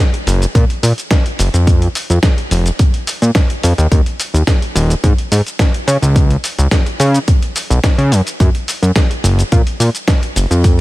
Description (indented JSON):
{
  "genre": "nu-disco, nu disco",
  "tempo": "107 BPM",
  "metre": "4/4",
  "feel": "straight",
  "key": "unclear",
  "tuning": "A4 = 440 Hz",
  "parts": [
    { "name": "dusty soul sampler-style drum kit", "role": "drums", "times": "0.0-10.8 s", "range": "hi-hat, shaker, snare drum", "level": "-19 LUFS", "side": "equal", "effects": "small room ambience" },
    { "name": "fat analog bass", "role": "bass", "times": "0.3-10.8 s", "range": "Eb1 to C#3", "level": "-11 LUFS", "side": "equal", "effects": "sidechain pumping" },
    { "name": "electronic kick drum", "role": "drums", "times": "0.6-10.8 s", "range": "none", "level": "-12 LUFS", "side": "equal", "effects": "small room ambience" }
  ],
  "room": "little or no reverb",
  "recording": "none",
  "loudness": "-11 LUFS",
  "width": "side -19 dB against mid",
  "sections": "0.0-10.8 A section",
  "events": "none",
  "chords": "none"
}